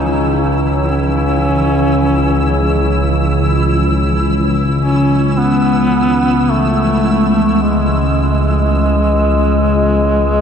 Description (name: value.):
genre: ambient.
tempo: free time.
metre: none.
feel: none.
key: C# minor.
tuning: A4 = 441 Hz.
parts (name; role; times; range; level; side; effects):
warm duduk; melody; 0.0-10.4 s; G#3 to C#4; -16 LUFS; equal; ping-pong delay.
analog drone; drone; 0.0-10.4 s; C#2; -14 LUFS; equal; chorus.
flickering grainy texture; texture; 0.0-10.4 s; E3 to E6; -20 LUFS; equal; built-in reverb.
room: wet huge ambient reverb, RT60 8.1 s.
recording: none.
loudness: -11 LUFS.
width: side -7 dB against mid.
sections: 0.0-10.4 A section.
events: none.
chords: 0.0 C#m.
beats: free time.